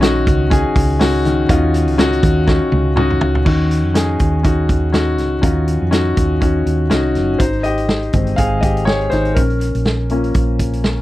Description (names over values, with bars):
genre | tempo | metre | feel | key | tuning
piano-driven pop | 122 BPM | 4/4 | swing 56% on 16ths | Ab major from 7.4 s | A4 = 440 Hz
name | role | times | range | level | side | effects
clear grand piano | accompaniment | 0.0-11.0 s | Eb3 to F5 | -17 LUFS | left 2 dB | none
hollow-body short-scale fingered electric bass | bass | 0.0-11.0 s | Gb1 to F2 | -18 LUFS | right 1 dB | none
loose indie drum kit | drums | 0.0-11.0 s | crash cymbal, hi-hat, kick drum, snare drum, toms | -18 LUFS | right 1 dB | none
room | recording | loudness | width
light reverb | dry, close 1970s-style studio recording | -13 LUFS | side -16 dB against mid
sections
0.0-3.5 A section; 3.5-7.4 B section; 7.4-11.0 C section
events
drum fill 2.5-3.5; grand piano fill 2.7-3.5; grand piano solo 7.4-11.0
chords
0.0 Ebm7; 7.4 Ab; 9.4 Bbm